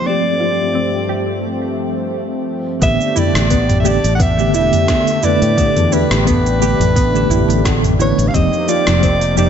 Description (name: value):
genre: sunset chillout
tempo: 87 BPM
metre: 4/4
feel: swing 54% on 16ths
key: unclear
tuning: A4 = 440 Hz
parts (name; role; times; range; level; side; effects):
- warm soprano saxophone; melody; 0.0-9.5 s; B4 to F#5; -19 LUFS; right 1 dB; digital delay
- bell-like tine electric piano; accompaniment; 0.0-9.5 s; D3 to B4; -19 LUFS; left 1 dB; fast stereo tremolo, auto-pan, digital delay
- lush unison pad; sustained chords; 0.0-9.5 s; G2 to G4; -22 LUFS; left 1 dB; chorus
- soft round pluck; arpeggios; 0.1-9.5 s; B3 to G4; -23 LUFS; right 3 dB; chorus, digital delay
- fretless electric bass; bass; 2.8-9.5 s; E1 to A2; -17 LUFS; equal; none
- electronic kick drum; drums; 2.8-9.2 s; none; -18 LUFS; equal; none
- smooth R&B drum kit; drums; 2.8-9.5 s; cabasa, hi-hat, snare drum, toms; -20 LUFS; equal; none
room: light reverb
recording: nothing above 7.9 kHz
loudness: -12 LUFS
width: side -8 dB against mid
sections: 0.0-2.8 A section; 2.8-9.5 B section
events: filter sweep on synth arpeggio sound 0.0-2.8; break 1.4-2.8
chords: 0.1 G9sus4; 2.8 A9sus4; 8.3 F9sus4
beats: | 0.06 0.75 1.44 2.13 | 2.82 3.51 4.20 4.89 | 5.58 6.27 6.96 7.65 | 8.34 9.03